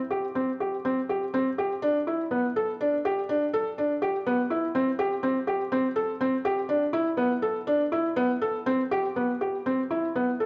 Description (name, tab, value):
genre	contemporary instrumental, contemporary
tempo	122 BPM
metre	5/4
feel	straight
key	A minor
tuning	A4 = 440 Hz
part	felt-muted upright piano	solo	0.1-10.5 s	B3 to A4	-27 LUFS	equal	none
room	moderate scoring stage reverb, RT60 1.8 s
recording	worn, warbling old tape, cassette tape, warbly pitch drift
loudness	-27 LUFS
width	mono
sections	0.0-9.2 A section; 9.2-10.5 B section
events	none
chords	none